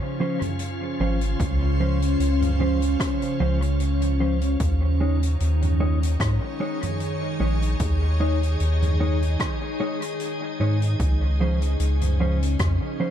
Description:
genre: ambient dub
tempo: 75 BPM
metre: 4/4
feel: swing 55% on 16ths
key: unclear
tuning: A4 = 439 Hz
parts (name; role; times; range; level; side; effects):
- soft additive organ-like pad; sustained chords; 0.0-13.1 s; Db3 to Db5; -27 LUFS; equal; ensemble chorus, built-in reverb
- mellow electric guitar; stabs; 0.2-13.1 s; F3 to Db5; -30 LUFS; right 1 dB; dub echo
- soft-mallet drum kit; drums; 0.4-12.8 s; hi-hat, rim click, toms; -33 LUFS; equal; dub echo
- soft dub sub bass; bass; 1.0-12.8 s; Ab1 to Ab2; -21 LUFS; equal; none
- electronic kick drum; drums; 1.4-12.8 s; none; -28 LUFS; equal; overdrive
room: small room reverb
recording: dark, warm production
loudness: -21 LUFS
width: side -10 dB against mid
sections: 0.0-13.1 A section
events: none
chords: 0.0 Dbmaj7; 4.6 Eb7sus4; 11.0 Dbmaj7

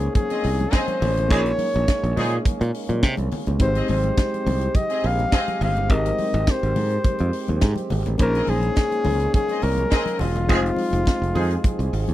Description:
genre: disco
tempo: 104 BPM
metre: 4/4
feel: straight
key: unclear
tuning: A4 = 442 Hz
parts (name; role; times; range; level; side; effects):
- warm flugelhorn; melody; 0.0-12.1 s; F4 to F5; -25 LUFS; left 2 dB; none
- reed electric piano; accompaniment; 0.0-12.1 s; Ab3 to C5; -29 LUFS; left 2 dB; fast tremolo
- warm French horn section; sustained chords; 0.0-12.1 s; F3 to Ab4; -32 LUFS; right 5 dB; stereo widening
- modern bright fingered electric bass; bass; 0.0-12.1 s; E1 to C3; -22 LUFS; right 1 dB; none
- tight funk drum kit; drums; 0.0-12.1 s; hi-hat, kick drum, snare drum; -22 LUFS; equal; none
- congas; percussion; 0.2-12.1 s; none; -32 LUFS; left 3 dB; none
- rich studio string section; second line; 0.3-10.2 s; C4 to Eb5; -31 LUFS; left 1 dB; tape echo
- mellow horn section; stabs; 1.3-2.3, 10.5-11.5 s; F3 to Ab4; -26 LUFS; right 2 dB; none
room: small room ambience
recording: dry, close 1970s-style studio recording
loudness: -19 LUFS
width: side -14 dB against mid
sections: 0.0-12.1 A section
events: band accent 1.3-3.6, 10.5-12.1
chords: 0.0 Bbm11; 3.6 Abmaj7; 8.2 Bbm11; 10.5 Fm7

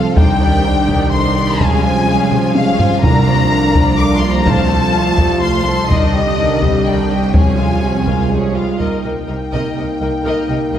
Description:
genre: cinematic, epic orchestral film score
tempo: 125 BPM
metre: 3/4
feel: straight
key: unclear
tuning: A4 = 439 Hz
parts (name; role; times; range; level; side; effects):
- warm symphonic violin section; melody; 0.0-10.8 s; Eb5 to D6; -19 LUFS; left 3 dB; none
- warm symphonic violin section; second line; 0.0-10.8 s; D4 to A5; -24 LUFS; left 2 dB; none
- warm symphonic viola section; accompaniment; 0.0-10.8 s; D3 to Bb4; -22 LUFS; right 1 dB; none
- mellow French horn section; sustained chords; 0.0-10.8 s; D3 to F4; -20 LUFS; left 1 dB; none
- rich studio double bass section; bass; 0.0-10.8 s; C2; -21 LUFS; right 3 dB; none
- rich symphonic cello section; bass; 0.0-10.8 s; C2 to C3; -20 LUFS; right 2 dB; none
- taiko ensemble; drums; 0.2-9.8 s; none; -17 LUFS; left 1 dB; none
- timpani; percussion; 3.0-5.1, 7.3-8.0 s; C3; -21 LUFS; right 2 dB; none
room: wet scoring stage reverb, RT60 1.8 s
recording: heard from further back in the room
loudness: -12 LUFS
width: side -10 dB against mid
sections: 0.0-8.8 A section; 8.8-10.8 B section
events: drum fill 2.3-3.0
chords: 0.2 Cmadd9; 1.6 Db/C; 3.0 Bb/C; 4.5 F/C; 5.9 Cmadd9; 7.3 Db/C; 8.8 Cm7

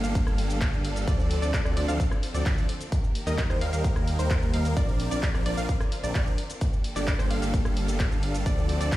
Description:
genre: EDM, festival progressive house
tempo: 130 BPM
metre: 4/4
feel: straight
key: G minor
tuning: A4 = 439 Hz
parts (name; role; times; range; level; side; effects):
- clear studio string section; sustained chords; 0.0-9.0 s; D3 to Bb4; -38 LUFS; left 1 dB; sidechain pumping
- wide unison pluck; arpeggios; 0.0-9.0 s; C5 to F5; -36 LUFS; right 1 dB; sidechain pumping, tape echo
- supersaw chords; riff; 0.0-9.0 s; F3 to F5; -32 LUFS; equal; phaser, sidechain pumping, tape echo
- wide detuned saw bass; bass; 0.0-9.0 s; G1 to Eb2; -29 LUFS; equal; chorus, sidechain pumping
- big-room dance drum kit; drums; 0.0-9.0 s; handclaps, hi-hat, rim click, shaker; -36 LUFS; left 1 dB; none
- downlifter; sound effects; 0.0-1.1 s; none; barely audible; none; none
- electronic kick drum; drums; 0.2-9.0 s; none; -26 LUFS; equal; none
room: digital ambience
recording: played on a big sound system in a bare room, stone room reverb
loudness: -24 LUFS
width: side -16 dB against mid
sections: 0.0-9.0 A section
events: none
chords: 0.0 Gmadd9; 1.1 Dm7; 2.9 Eb; 4.8 Bbadd9; 6.6 Gmadd9; 8.5 Dm7

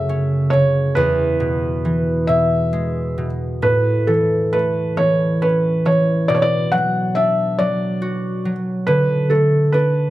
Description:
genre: children's music, lullaby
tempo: 46 BPM (dotted quarters)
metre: 6/8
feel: rubato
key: A major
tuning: A4 = 439 Hz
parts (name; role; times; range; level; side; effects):
- felt-muted upright piano; melody; 0.0-10.1 s; A4 to F#5; -18 LUFS; equal; none
- concert harp; accompaniment; 0.0-10.1 s; E2 to F#4; -18 LUFS; equal; none
room: moderate recital hall reverb, RT60 1.6 s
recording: close, detailed microphones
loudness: -16 LUFS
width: side -15 dB against mid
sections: 0.0-10.1 A section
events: none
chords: 0.0 F#m7; 1.0 E; 3.6 A; 6.3 Bm; 8.9 D

